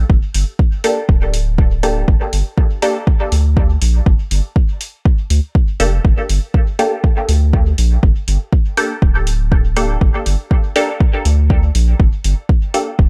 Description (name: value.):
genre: dub techno.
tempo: 121 BPM.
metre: 4/4.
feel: straight.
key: G minor.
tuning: A4 = 439 Hz.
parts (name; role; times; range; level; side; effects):
round analog bass; bass; 0.0-13.1 s; D1 to D2; -17 LUFS; equal; sidechain pumping.
electronic kick drum; drums; 0.1-13.1 s; none; -15 LUFS; equal; none.
electronic hi-hat; drums; 0.3-12.8 s; none; -28 LUFS; equal; none.
filtered dub chord stab; stabs; 0.8-12.9 s; Bb3 to A4; -22 LUFS; equal; phaser, sidechain pumping, dub echo.
room: little or no reverb.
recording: echo-heavy mix.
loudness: -15 LUFS.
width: mono.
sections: 0.0-13.1 A section.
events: none.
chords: 0.0 Gmadd9.